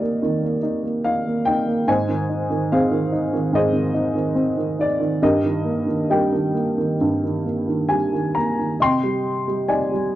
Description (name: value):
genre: classical, lyrical solo piano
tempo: 66-74 BPM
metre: 4/4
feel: rubato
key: unclear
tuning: A4 = 439 Hz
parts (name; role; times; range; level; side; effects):
- dark upright piano; solo; 0.0-10.2 s; G2 to C6; -18 LUFS; equal; none
room: light reverb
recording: worn, warbling old tape, cassette tape, warbly pitch drift, nothing above 7.5 kHz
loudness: -18 LUFS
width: side -14 dB against mid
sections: 0.0-10.2 A section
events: none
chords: 0.0 Eb; 1.9 Ab; 5.2 Eb/G; 8.8 Cmadd9